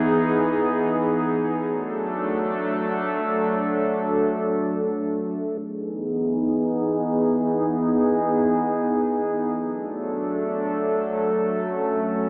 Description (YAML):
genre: hip hop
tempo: free time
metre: none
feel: none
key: E major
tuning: A4 = 440 Hz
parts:
  - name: warbly tape-like pad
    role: solo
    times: 0.0-12.3 s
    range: E3 to A4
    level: -20 LUFS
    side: equal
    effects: chorus, built-in reverb, low-pass filter
room: moderate lush hall reverb, RT60 3.0 s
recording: rough home demo mix, AM radio sound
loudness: -21 LUFS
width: side -37 dB against mid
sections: 0.0-5.6 A section; 5.6-12.3 B section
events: filter sweep on ambient pad 5.6-12.3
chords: 0.0 Emaj7; 1.6 D; 5.6 Emaj7; 9.5 D